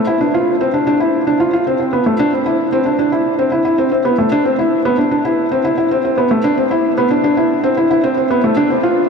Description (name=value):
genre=electronica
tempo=113 BPM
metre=4/4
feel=straight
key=unclear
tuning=A4 = 441 Hz
part: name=felt-muted upright piano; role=solo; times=0.0-9.0 s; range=A3 to F4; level=-12 LUFS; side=equal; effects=analog delay
room=wet huge ambient reverb, RT60 7.1 s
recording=dreamy mix soaked in reverb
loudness=-12 LUFS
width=side -5 dB against mid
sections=0.0-4.3 A section; 4.3-9.1 B section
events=build-up 4.3-9.1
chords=none